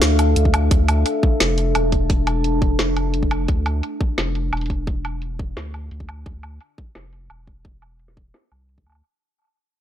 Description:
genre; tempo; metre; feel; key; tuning
half-time drum and bass; 173 BPM; 4/4; half-time; D minor; A4 = 440 Hz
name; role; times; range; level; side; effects
deep dark ambient pad; sustained chords; 0.0-9.0 s; D4 to A5; -24 LUFS; left 1 dB; chorus, built-in reverb, sidechain pumping
saturated sub bass; bass; 0.0-9.0 s; E1 to D2; -21 LUFS; equal; none
drum and bass drum kit; drums; 0.0-9.0 s; hi-hat, snare drum, woodblock; -23 LUFS; equal; low-pass filter on hats, low-pass filter on perc, low-pass filter on snare, low-pass filter on toms, low-pass filter on room, analog delay
electronic kick drum; drums; 0.5-8.8 s; none; -20 LUFS; equal; none
room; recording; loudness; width
light reverb; echo-heavy mix; -18 LUFS; side -10 dB against mid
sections
0.0-9.0 A section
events
fade-out 0.0-9.0; filter sweep on drum 0.0-9.0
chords
0.0 Dm

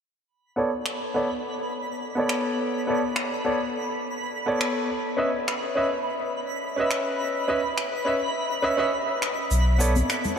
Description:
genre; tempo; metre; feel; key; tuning
sunset chillout; 104 BPM; 4/4; straight; B minor; A4 = 439 Hz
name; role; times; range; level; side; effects
twinkling granular texture; texture; 0.9-10.4 s; B5; -32 LUFS; right 2 dB; built-in reverb, wide subtle chorus
bright grand piano; accompaniment; 0.6-10.4 s; B3 to E5; -25 LUFS; equal; auto-pan, low-pass filter, ping-pong delay
finger snaps and shaker; drums; 0.9-10.3 s; none; -32 LUFS; equal; none
warm sub bass; bass; 9.5-10.0 s; B1; -20 LUFS; equal; none
congas; percussion; 10.0-10.4 s; none; -28 LUFS; left 2 dB; none
room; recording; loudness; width
wet cathedral reverb, RT60 6.7 s; dreamy mix soaked in reverb; -23 LUFS; side -7 dB against mid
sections
0.3-10.4 A section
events
filter sweep on grand piano 0.3-10.4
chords
0.3 Bm9; 4.9 C#m9; 9.5 Bm9

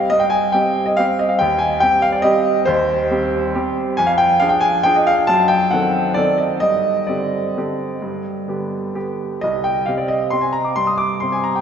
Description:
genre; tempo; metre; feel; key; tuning
classical, piano waltz; 124-148 BPM; 3/4; rubato; C minor; A4 = 439 Hz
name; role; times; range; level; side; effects
clear concert grand piano; solo; 0.0-11.6 s; C2 to Eb6; -15 LUFS; equal; none
room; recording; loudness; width
wet cathedral reverb, RT60 4.5 s; recorded in a church or concert hall, nothing above 7.7 kHz; -15 LUFS; side -8 dB against mid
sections
0.0-11.6 A section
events
none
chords
0.0 C5; 1.4 Cm/Eb; 4.0 Ddim/F; 5.3 F#dim7; 6.6 Gsus4; 8.0 G; 9.4 C5

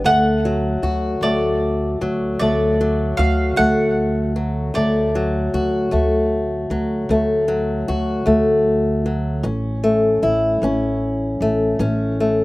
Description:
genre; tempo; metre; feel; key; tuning
acoustic country blues, solo or duo; 51 BPM (dotted quarters); 12/8; straight; D major; A4 = 439 Hz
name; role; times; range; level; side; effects
mandolin; melody; 0.0-5.6 s; D5 to G5; -22 LUFS; right 1 dB; none
fingerpicked old ladder-braced acoustic guitar; accompaniment; 0.0-12.4 s; D2 to F#4; -18 LUFS; left 2 dB; none
upright bass; bass; 0.0-12.4 s; A1 to D2; -21 LUFS; right 1 dB; none
room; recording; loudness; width
little or no reverb; recorded outdoors, with no room sound; -17 LUFS; side -19 dB against mid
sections
0.0-12.4 A section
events
none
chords
0.1 D; 9.5 A

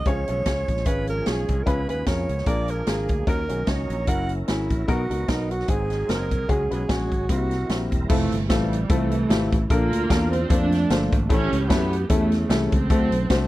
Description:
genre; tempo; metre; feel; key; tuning
uptempo gospel; 150 BPM; 4/4; swing 55% on 8ths; unclear; A4 = 438 Hz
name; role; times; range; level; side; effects
breathy alto saxophone; melody; 0.0-7.9 s; D#4 to F#5; -28 LUFS; right 2 dB; none
mellow French horn section; sustained chords; 0.0-8.1 s; E#3 to A#4; -38 LUFS; equal; none
overdriven tonewheel organ; sustained chords; 0.0-8.1 s; E#3 to A#4; -36 LUFS; right 3 dB; fast rotary speaker, chorus vibrato
fingered electric bass; bass; 0.0-13.5 s; E1 to F#2; -26 LUFS; equal; none
clear upright piano; accompaniment; 0.1-13.5 s; G#2 to C#5; -27 LUFS; left 4 dB; none
swinging big-band drum kit; drums; 0.1-13.4 s; crash cymbal, hi-hat, kick drum, snare drum; -24 LUFS; equal; none
warm studio string section; melody; 8.1-13.5 s; C3 to G4; -24 LUFS; right 3 dB; none
room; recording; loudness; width
little or no reverb; dry, close 1970s-style studio recording; -20 LUFS; side -16 dB against mid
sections
0.0-8.1 A section; 8.1-13.5 B section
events
none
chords
0.1 C#; 1.7 C#7; 2.5 A#7; 3.3 D#m7; 4.1 F#7; 4.9 Bmaj7; 5.7 G#7; 6.5 C#sus4; 7.3 C7; 8.1 Fmaj7; 9.7 Bbmaj7; 11.3 A7; 12.9 D7

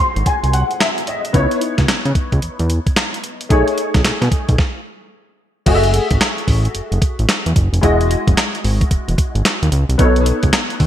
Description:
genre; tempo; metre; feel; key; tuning
R&B, new jack swing; 111 BPM; 4/4; swing 64% on 16ths; unclear; A4 = 439 Hz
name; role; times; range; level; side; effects
warm concert grand piano; accompaniment; 0.0-10.9 s; G#3 to B#5; -20 LUFS; left 2 dB; ensemble chorus
fat analog bass; bass; 0.2-10.9 s; E1 to C#3; -16 LUFS; equal; none
crisp 8-bit digital drum machine; drums; 0.2-10.9 s; crash cymbal, handclaps, hi-hat, kick drum, snare drum; -17 LUFS; equal; gated reverb
room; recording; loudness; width
light reverb; bright 1980s-style digital production; -14 LUFS; side -11 dB against mid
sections
0.0-5.7 A section; 5.7-10.9 B section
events
grand piano fill 0.0-1.3; stop 4.6-5.7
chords
0.0 G#7b13; 1.3 C#m9; 3.5 B13; 5.7 F#m9; 7.8 Emaj9; 10.0 B9

